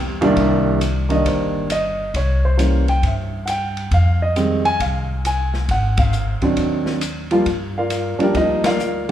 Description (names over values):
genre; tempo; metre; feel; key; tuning
jazz piano trio; 135 BPM; 4/4; swing 66% on 8ths; C minor; A4 = 440 Hz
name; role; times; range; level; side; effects
upright bass; bass; 0.0-9.1 s; G1 to G2; -21 LUFS; equal; none
warm grand piano; melody; 0.2-9.1 s; C2 to Ab5; -19 LUFS; right 1 dB; none
open jazz drum kit; drums; 0.2-9.1 s; hi-hat, kick drum, ride cymbal, snare drum; -26 LUFS; left 2 dB; none
room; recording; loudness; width
wet recital hall reverb, RT60 1.6 s; recorded in a church or concert hall; -16 LUFS; side -11 dB against mid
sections
0.4-9.1 A section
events
band accent 5.9, 8.6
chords
0.4 Cm7; 2.1 C(b9); 3.9 Fm7; 5.7 Ab7#11; 7.5 Gm7